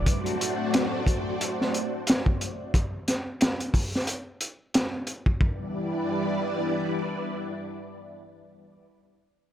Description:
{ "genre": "trip hop", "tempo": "90 BPM", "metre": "4/4", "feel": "swing 58% on 16ths", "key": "E minor", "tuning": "A4 = 440 Hz", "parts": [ { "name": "string machine, cellos", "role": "sustained chords", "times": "0.0-8.8 s", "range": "G3 to D5", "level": "-29 LUFS", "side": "equal", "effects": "phaser, ensemble chorus, vintage 12-bit sampler grit" }, { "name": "crunchy breakbeat drum kit", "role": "drums", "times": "0.1-5.6 s", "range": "hi-hat, kick drum, snare drum", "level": "-24 LUFS", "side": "equal", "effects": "none" } ], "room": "small room ambience", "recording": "none", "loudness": "-25 LUFS", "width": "side -11 dB against mid", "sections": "0.0-5.4 A section; 5.4-8.1 B section", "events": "none", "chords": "0.1 D7; 2.7 N.C.; 5.4 Em7" }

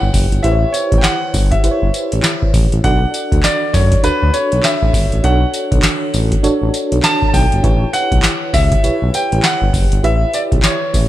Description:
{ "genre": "R&B, new jack swing", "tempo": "100 BPM", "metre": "4/4", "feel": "swing 60% on 16ths", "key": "unclear", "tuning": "A4 = 443 Hz", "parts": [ { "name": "warm concert grand piano", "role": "melody", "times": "0.0-11.1 s", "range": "B4 to A5", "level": "-19 LUFS", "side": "equal", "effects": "diffuse ambient delay" }, { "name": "FM electric piano with tremolo", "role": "accompaniment", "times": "0.0-11.1 s", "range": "D4 to E5", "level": "-20 LUFS", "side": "right 2 dB", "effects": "none" }, { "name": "smooth synth bass", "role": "bass", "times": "0.0-11.1 s", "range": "F#1 to F#2", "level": "-16 LUFS", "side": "equal", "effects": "none" }, { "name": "booming analog drum machine", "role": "drums", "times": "0.1-11.1 s", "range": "handclaps, hi-hat, kick drum, snare drum, tambourine", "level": "-16 LUFS", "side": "equal", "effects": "vintage 12-bit sampler grit" } ], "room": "light reverb, digital ambience", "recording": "none", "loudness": "-12 LUFS", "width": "side -14 dB against mid", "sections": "0.0-11.1 A section", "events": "none", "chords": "0.0 A7; 2.8 Bm9; 7.6 A7" }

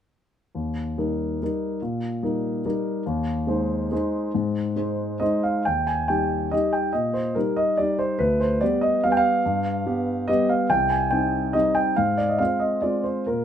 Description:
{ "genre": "classical, piano waltz", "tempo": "131-151 BPM", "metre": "3/4", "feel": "rubato", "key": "Eb major", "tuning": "A4 = 442 Hz", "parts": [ { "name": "warm concert grand piano", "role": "solo", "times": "0.5-13.4 s", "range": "C2 to Ab5", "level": "-21 LUFS", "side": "equal", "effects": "none" } ], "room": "light reverb", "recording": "close, detailed microphones", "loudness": "-21 LUFS", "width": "side -9 dB against mid", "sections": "0.5-5.7 A section; 5.7-13.4 B section", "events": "none", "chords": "0.5 Eb; 3.1 Ab/Eb; 5.7 Eb; 8.2 G7/D; 10.7 Cm; 12.0 Fm/Ab" }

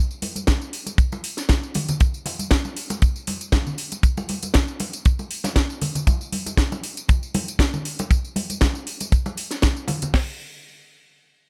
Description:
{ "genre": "nu-disco", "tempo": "118 BPM", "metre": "4/4", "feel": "swing 54% on 16ths", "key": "none", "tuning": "none", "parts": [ { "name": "house drum kit", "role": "drums", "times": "0.1-10.1 s", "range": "hi-hat, snare drum, tambourine", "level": "-29 LUFS", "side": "equal", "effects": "overdrive" }, { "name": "tambourine and congas", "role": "percussion", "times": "0.1-10.1 s", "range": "none", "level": "-32 LUFS", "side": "equal", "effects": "none" }, { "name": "tight funk drum kit", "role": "drums", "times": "0.5-10.3 s", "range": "hi-hat, kick drum, snare drum", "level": "-20 LUFS", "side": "equal", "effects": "none" } ], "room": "small room reverb", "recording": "none", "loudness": "-23 LUFS", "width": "mono", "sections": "0.0-10.1 A section; 10.1-11.5 B section", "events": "drop 0.0-10.1", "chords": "none" }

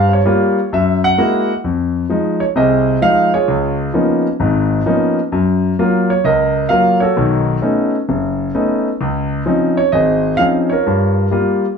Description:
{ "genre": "solo jazz", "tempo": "130 BPM", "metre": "4/4", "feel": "swing 68% on 8ths", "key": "F minor", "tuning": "A4 = 442 Hz", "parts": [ { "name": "warm concert grand piano", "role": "solo", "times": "0.0-11.6 s", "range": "F#1 to Gb5", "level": "-13 LUFS", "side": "equal", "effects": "none" } ], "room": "wet club reverb, RT60 0.6 s", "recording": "heard from further back in the room", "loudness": "-13 LUFS", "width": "side -6 dB against mid", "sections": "0.0-1.6 A section; 1.6-11.8 B section", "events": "grand piano solo 0.0-1.6", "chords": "0.0 Gm7b5; 0.7 Gb9; 1.6 Fm7; 3.5 Db13; 5.3 Gbmaj7; 7.2 B9; 9.0 Dbmaj9; 10.9 Gm7b5" }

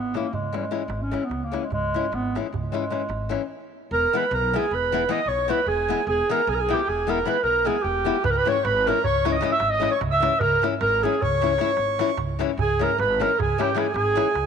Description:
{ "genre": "balkan folk, Balkan wedding band", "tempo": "304 BPM (eighths)", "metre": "11/8", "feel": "straight", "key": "C# dorian sharp4", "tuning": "A4 = 440 Hz", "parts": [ { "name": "dark clarinet", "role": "melody", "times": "0.0-14.5 s", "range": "G3 to E5", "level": "-23 LUFS", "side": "right 1 dB", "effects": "none" }, { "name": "upright bass", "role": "bass", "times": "0.0-14.5 s", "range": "E1 to C#2", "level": "-30 LUFS", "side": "equal", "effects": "none" }, { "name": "nylon-string guitar", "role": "accompaniment", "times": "0.1-14.3 s", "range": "E3 to E4", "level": "-28 LUFS", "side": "left 12 dB", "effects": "none" }, { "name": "darbuka", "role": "percussion", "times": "0.1-3.5, 8.2-14.5 s", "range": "none", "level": "-31 LUFS", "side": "right 5 dB", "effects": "none" }, { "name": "accordion", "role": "second line", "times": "3.9-14.5 s", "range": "G5 to E6", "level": "-29 LUFS", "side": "right 13 dB", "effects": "none" } ], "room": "moderate plate reverb, RT60 2.7 s", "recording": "1960s-style stereo with parts hard left and right", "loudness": "-20 LUFS", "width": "side -7 dB against mid", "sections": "0.0-3.9 A section; 3.9-12.6 B section; 12.6-14.5 A section", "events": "stop 3.5-3.9", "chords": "0.0 C#m; 3.9 E; 8.2 C#m" }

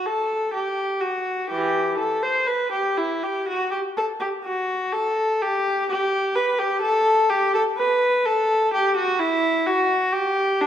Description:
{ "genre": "classical, baroque-style suite movement for unaccompanied viola", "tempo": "62 BPM", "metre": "4/4", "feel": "rubato", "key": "unclear", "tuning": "A4 = 439 Hz", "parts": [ { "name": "rich viola", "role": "solo", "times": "0.0-10.7 s", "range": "E3 to C5", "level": "-20 LUFS", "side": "equal", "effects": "none" } ], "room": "moderate concert hall reverb, RT60 1.7 s", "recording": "minimal, uncompressed stereo recording", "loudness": "-20 LUFS", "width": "side -10 dB against mid", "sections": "0.0-10.7 A section", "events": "none", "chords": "none" }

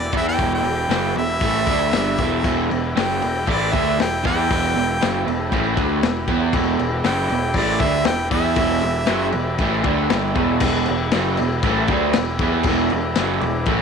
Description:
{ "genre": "garage rock duo or trio", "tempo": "118 BPM", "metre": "4/4", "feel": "straight", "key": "E minor", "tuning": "A4 = 440 Hz", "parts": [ { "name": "bright harmonica", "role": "melody", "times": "0.0-9.3 s", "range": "D5 to G5", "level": "-24 LUFS", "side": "right 2 dB", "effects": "overdrive" }, { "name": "combo organ", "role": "sustained chords", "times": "0.0-13.8 s", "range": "G4 to A5", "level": "-28 LUFS", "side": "right 2 dB", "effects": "none" }, { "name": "crunchy overdriven guitar", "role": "riff", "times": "0.0-13.8 s", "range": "E2 to E4", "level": "-21 LUFS", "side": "right 2 dB", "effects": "none" }, { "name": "fuzz picked electric bass", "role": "bass", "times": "0.0-13.8 s", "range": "E1 to E2", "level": "-26 LUFS", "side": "equal", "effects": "overdrive" }, { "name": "crunchy breakbeat drum kit", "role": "drums", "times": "0.1-13.8 s", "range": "crash cymbal, kick drum, snare drum", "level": "-23 LUFS", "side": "left 5 dB", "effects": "none" } ], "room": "light reverb, small room ambience", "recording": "1960s-style stereo", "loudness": "-17 LUFS", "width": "side -6 dB against mid", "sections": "0.0-10.6 A section; 10.6-13.8 B section", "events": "harmonica solo 0.0-10.6; transistor combo organ fill 5.0-6.5, 13.2-13.8", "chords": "0.0 Em" }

